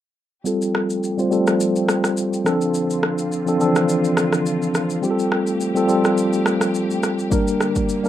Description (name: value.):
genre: afrobeats.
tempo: 105 BPM.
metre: 4/4.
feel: swing 55% on 16ths.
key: F major.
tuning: A4 = 440 Hz.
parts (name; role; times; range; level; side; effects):
mellow tine electric piano; accompaniment; 0.4-8.1 s; E3 to C5; -18 LUFS; equal; fast stereo tremolo, low-pass filter.
warm studio string section; sustained chords; 0.5-8.1 s; D3 to G4; -29 LUFS; right 2 dB; sidechain pumping, low-pass filter.
deep house drum kit; drums; 0.5-8.1 s; kick drum, rim click, shaker; -24 LUFS; equal; none.
room: light reverb.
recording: rough home demo mix.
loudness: -17 LUFS.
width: side -11 dB against mid.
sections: 0.5-8.1 A section.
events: filter sweep 0.5-8.1.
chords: 0.5 Fadd9; 2.5 Dm7; 5.0 Fadd9; 7.3 Gm.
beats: | 0.46 1.03 1.60 2.17 | 2.75 3.32 3.89 4.46 | 5.03 5.60 6.17 6.75 | 7.32 7.89.